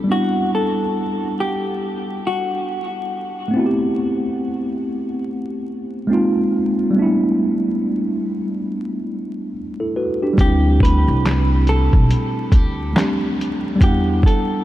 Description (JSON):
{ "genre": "lo-fi hip hop", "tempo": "70 BPM", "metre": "4/4", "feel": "swing 60% on 16ths", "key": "unclear", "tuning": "A4 = 439 Hz", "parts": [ { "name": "hollow-body jazz guitar", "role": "melody", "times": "0.0-2.9, 10.4-14.6 s", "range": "F#4 to B4", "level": "-25 LUFS", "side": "left 1 dB", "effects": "wide subtle chorus, low-pass filter, diffuse ambient delay" }, { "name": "tine electric piano", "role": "accompaniment", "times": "0.0-14.6 s", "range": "G3 to F#5", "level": "-19 LUFS", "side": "equal", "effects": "medium stereo tremolo, cassette tape, low-pass filter" }, { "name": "upright bass", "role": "bass", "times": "10.4-14.2 s", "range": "B1 to E2", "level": "-18 LUFS", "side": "equal", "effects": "none" }, { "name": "lo-fi sampler-style drum kit", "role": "drums", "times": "10.4-14.5 s", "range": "handclaps, hi-hat, kick drum, snare drum", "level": "-17 LUFS", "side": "equal", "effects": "none" } ], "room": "moderate huge ambient reverb, RT60 7.5 s", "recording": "dreamy mix soaked in reverb, vinyl crackle", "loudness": "-16 LUFS", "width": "side -14 dB against mid", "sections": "0.0-10.4 A section; 10.4-14.6 B section", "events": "none", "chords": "0.1 Em9; 3.5 Am9; 6.1 Ab69; 7.0 G69; 10.4 D7sus4; 13.8 Em9" }